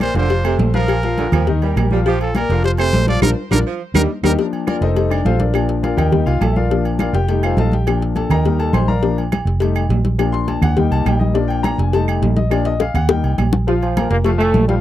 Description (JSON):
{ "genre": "latin, salsa", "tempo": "207 BPM", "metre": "4/4", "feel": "straight", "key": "Bb major", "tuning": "A4 = 440 Hz", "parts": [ { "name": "brilliant trumpet", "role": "melody", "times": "0.0-4.3 s", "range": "G4 to D5", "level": "-23 LUFS", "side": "right 1 dB", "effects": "tape echo" }, { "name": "clear baby grand piano", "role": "accompaniment", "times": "0.0-14.8 s", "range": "Eb3 to C6", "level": "-20 LUFS", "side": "left 5 dB", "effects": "none" }, { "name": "vintage muted fingered electric bass", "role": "bass", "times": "0.0-14.8 s", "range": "F1 to Eb2", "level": "-18 LUFS", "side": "right 1 dB", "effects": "none" }, { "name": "claves", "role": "percussion", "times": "0.0-14.5 s", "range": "none", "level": "-29 LUFS", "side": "right 24 dB", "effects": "none" }, { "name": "congas", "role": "percussion", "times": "0.0-14.8 s", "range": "none", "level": "-23 LUFS", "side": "equal", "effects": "none" }, { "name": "cowbell and bongos", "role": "percussion", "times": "0.0-14.8 s", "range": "none", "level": "-23 LUFS", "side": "left 6 dB", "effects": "none" }, { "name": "timbales and agogo bells", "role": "percussion", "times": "0.0-14.7 s", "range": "none", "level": "-27 LUFS", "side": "right 6 dB", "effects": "none" }, { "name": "warm saxophone section", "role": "second line", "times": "0.2-4.3 s", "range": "C3 to G3", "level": "-24 LUFS", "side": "right 8 dB", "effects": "none" }, { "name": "warm trombone section", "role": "melody", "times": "13.7-14.8 s", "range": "G2 to F4", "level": "-18 LUFS", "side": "right 1 dB", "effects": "none" } ], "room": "little or no reverb", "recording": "dry, close 1970s-style studio recording", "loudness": "-14 LUFS", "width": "side -13 dB against mid", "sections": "0.0-4.4 A section; 4.4-13.7 B section; 13.7-14.8 C section", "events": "band accent 3.2-4.4; grand piano solo 4.4-13.7; drum fill 12.8-13.7", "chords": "0.3 F; 0.9 Bb5; 2.1 Bb; 2.6 F; 3.2 Bb; 3.8 Eb; 4.4 Bb; 5.0 F7; 5.5 Bb; 6.1 Eb; 6.7 Bb; 7.3 F7; 7.9 Bb; 8.4 Eb; 9.0 Bb; 9.6 F7; 10.2 Bb; 10.8 Eb; 11.4 Bb; 11.9 F7; 12.5 Bb; 13.1 Eb; 13.7 Bb5; 14.3 F" }